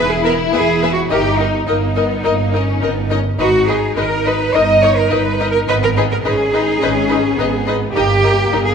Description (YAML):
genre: quick classical-period movement for string orchestra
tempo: 105 BPM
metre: 4/4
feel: straight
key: G# minor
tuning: A4 = 444 Hz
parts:
  - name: warm symphonic violin section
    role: melody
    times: 0.0-8.6 s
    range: D#5 to E5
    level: -24 LUFS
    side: left 7 dB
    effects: none
  - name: warm symphonic violin section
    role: second line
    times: 0.0-8.7 s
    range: A#3 to E4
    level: -21 LUFS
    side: left 5 dB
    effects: none
  - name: clear symphonic viola section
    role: accompaniment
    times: 0.0-8.6 s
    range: B3 to B4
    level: -22 LUFS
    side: left 2 dB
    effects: none
  - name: rich symphonic cello section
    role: bass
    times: 0.0-8.7 s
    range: D#4 to D#5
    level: -17 LUFS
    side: right 2 dB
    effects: none
  - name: rich symphonic double bass section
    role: bass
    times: 0.0-8.7 s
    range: E1 to G#1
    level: -20 LUFS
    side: right 2 dB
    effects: none
room: wet concert hall reverb, RT60 2.1 s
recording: minimal, uncompressed stereo recording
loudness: -13 LUFS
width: side -6 dB against mid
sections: 0.0-8.7 A section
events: none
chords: 0.0 E; 1.1 D#/G; 3.4 G#m; 4.5 D#/G; 5.7 G#m; 7.9 D#/G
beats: 0.53 | 1.11 1.68 2.25 2.83 | 3.40 3.97 4.55 5.11 | 5.68 6.25 6.81 7.38 | 7.95 8.52